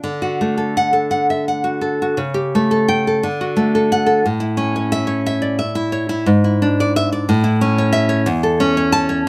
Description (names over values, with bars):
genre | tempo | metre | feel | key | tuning
romantic piece for solo classical guitar | 55-61 BPM (dotted quarters) | 6/8 | rubato | D major | A4 = 437 Hz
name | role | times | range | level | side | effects
nylon-string guitar | solo | 0.0-9.3 s | E2 to A5 | -17 LUFS | equal | none
room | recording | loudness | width
light reverb | none | -17 LUFS | mono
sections
0.0-9.3 A section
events
none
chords
0.0 D; 2.2 A7/C#; 3.2 D; 4.3 A; 6.3 E7/G#; 7.3 A; 8.3 A/E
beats
| 0.03 1.11 | 2.18 3.25 | 4.27 5.29 | 6.29 7.30 | 8.29